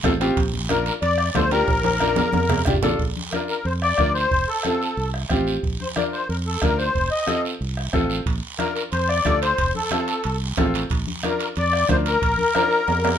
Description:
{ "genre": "latin, cumbia", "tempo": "182 BPM", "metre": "4/4", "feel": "straight", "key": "Bb major", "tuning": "A4 = 440 Hz", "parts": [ { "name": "bright upright piano", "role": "accompaniment", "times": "0.0-12.8 s", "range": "C4 to Bb4", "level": "-25 LUFS", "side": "left 1 dB", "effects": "none" }, { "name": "fingered electric bass", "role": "bass", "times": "0.0-13.1 s", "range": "F1 to F2", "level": "-26 LUFS", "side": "right 1 dB", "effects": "none" }, { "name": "bombo", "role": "percussion", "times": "0.0-13.2 s", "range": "none", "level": "-27 LUFS", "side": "right 2 dB", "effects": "none" }, { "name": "congas", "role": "percussion", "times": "0.0-12.7 s", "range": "none", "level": "-29 LUFS", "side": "left 2 dB", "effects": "none" }, { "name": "guiro", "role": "percussion", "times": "0.0-13.2 s", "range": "none", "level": "-32 LUFS", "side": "right 6 dB", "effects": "none" }, { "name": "timbales", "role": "percussion", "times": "0.0-2.9, 8.3-13.1 s", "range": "none", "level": "-30 LUFS", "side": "right 5 dB", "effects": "none" }, { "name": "musette accordion", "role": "melody", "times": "0.7-13.2 s", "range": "A4 to Eb5", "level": "-21 LUFS", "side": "left 3 dB", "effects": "none" } ], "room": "moderate studio reverb, RT60 0.5 s", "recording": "minimal, uncompressed stereo recording", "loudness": "-19 LUFS", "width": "side -9 dB against mid", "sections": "0.0-3.0 A section; 3.0-13.2 B section", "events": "drum fill 1.7-3.0, 12.6-13.2", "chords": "0.4 Bb; 4.3 F; 5.6 Bb; 7.0 F7; 8.3 Bb; 9.6 F; 10.9 Bb" }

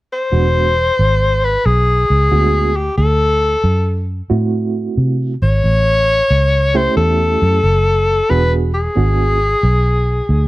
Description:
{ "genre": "blues", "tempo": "90 BPM", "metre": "4/4", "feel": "swing 68% on 8ths", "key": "unclear", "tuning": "A4 = 438 Hz", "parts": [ { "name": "warm tenor saxophone", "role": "melody", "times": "0.1-10.5 s", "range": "G4 to C#5", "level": "-15 LUFS", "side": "left 2 dB", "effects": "plate reverb" }, { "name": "barky reed electric piano", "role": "accompaniment", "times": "0.3-9.4 s", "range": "G#3 to G#4", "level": "-20 LUFS", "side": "right 6 dB", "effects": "overdrive, medium tremolo, plate reverb" }, { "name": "vintage muted fingered electric bass", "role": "bass", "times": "0.3-10.5 s", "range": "E1 to C3", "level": "-15 LUFS", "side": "equal", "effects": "none" } ], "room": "light reverb", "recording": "none", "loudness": "-12 LUFS", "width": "side -18 dB against mid", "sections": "0.3-10.5 A section", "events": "none", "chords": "0.3 E7; 3.0 D7; 5.6 A7; 8.3 E7" }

